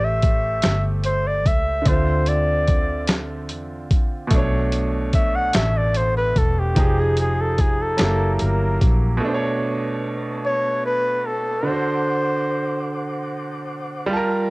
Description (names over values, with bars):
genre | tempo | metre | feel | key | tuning
slow six-eight R&B | 49 BPM (dotted quarters) | 6/8 | straight | unclear | A4 = 440 Hz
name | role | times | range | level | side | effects
clear flugelhorn | melody | 0.0-12.9 s | G4 to F#5 | -23 LUFS | equal | cassette tape
clear concert grand piano | accompaniment | 0.0-14.5 s | B2 to A5 | -25 LUFS | right 2 dB | cassette tape
vintage muted fingered electric bass | bass | 0.0-9.2 s | E1 to E2 | -22 LUFS | equal | none
dusty soul sampler-style drum kit | drums | 0.2-9.0 s | hi-hat, kick drum, snare drum | -19 LUFS | equal | overdrive, cassette tape
mellow tonewheel organ | sustained chords | 9.2-14.5 s | G3 to D6 | -32 LUFS | equal | fast rotary speaker, cassette tape
room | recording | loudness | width
little or no reverb | home recording on cassette | -18 LUFS | side -24 dB against mid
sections
0.0-9.2 A section; 9.2-14.5 B section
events
flugelhorn solo 0.0-9.2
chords
0.0 Am7; 1.9 Dm9; 4.3 Bm9; 6.8 Fm9; 8.0 F#7b9; 9.2 Bm9; 11.7 D7